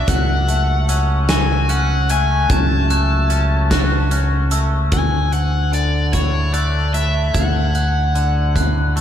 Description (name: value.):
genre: post-rock.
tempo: 50 BPM (dotted quarters).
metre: 6/8.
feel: straight.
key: D lydian.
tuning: A4 = 440 Hz.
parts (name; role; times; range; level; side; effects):
overdriven electric guitar; melody; 0.0-8.9 s; C#5 to A5; -22 LUFS; left 3 dB; ping-pong delay.
glockenspiel with hard plastic mallets; arpeggios; 0.0-9.0 s; E6 to D7; -29 LUFS; right 1 dB; ping-pong delay.
twangy electric guitar; arpeggios; 0.0-9.0 s; D2 to F#4; -24 LUFS; left 1 dB; lush chorus, ping-pong delay.
overdriven fingered electric bass; bass; 0.0-9.0 s; C#2 to D2; -17 LUFS; equal; none.
big rock drum kit; drums; 0.1-9.0 s; hi-hat, kick drum, snare drum; -22 LUFS; equal; none.
room: light reverb, small room ambience.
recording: none.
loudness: -15 LUFS.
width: side -10 dB against mid.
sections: 0.0-4.9 A section; 4.9-9.0 B section.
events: none.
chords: 0.1 F#m/C#; 4.9 D.